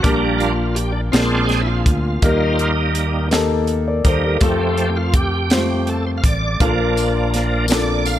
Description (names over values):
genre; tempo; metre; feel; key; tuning
slow gospel; 55 BPM (dotted quarters); 6/8; straight; Bb major; A4 = 440 Hz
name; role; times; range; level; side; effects
warm baby grand piano; accompaniment; 0.0-8.2 s; Bb2 to D5; -21 LUFS; left 3 dB; none
bright tonewheel organ; sustained chords; 0.0-8.2 s; F3 to F5; -21 LUFS; right 3 dB; slow rotary speaker, chorus vibrato
fingered electric bass; bass; 0.0-8.2 s; A1 to F2; -21 LUFS; equal; none
crisp fusion drum kit; drums; 0.0-8.2 s; hi-hat, kick drum, snare drum; -19 LUFS; equal; none
tambourine; percussion; 7.0-8.2 s; none; -29 LUFS; left 7 dB; none
room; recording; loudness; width
light reverb, studio ambience; none; -15 LUFS; side -12 dB against mid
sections
0.0-8.2 A section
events
tonewheel organ solo 0.0-8.2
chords
0.0 Gm/Bb; 1.1 Bb9; 2.2 Eb; 4.4 F; 6.6 Bb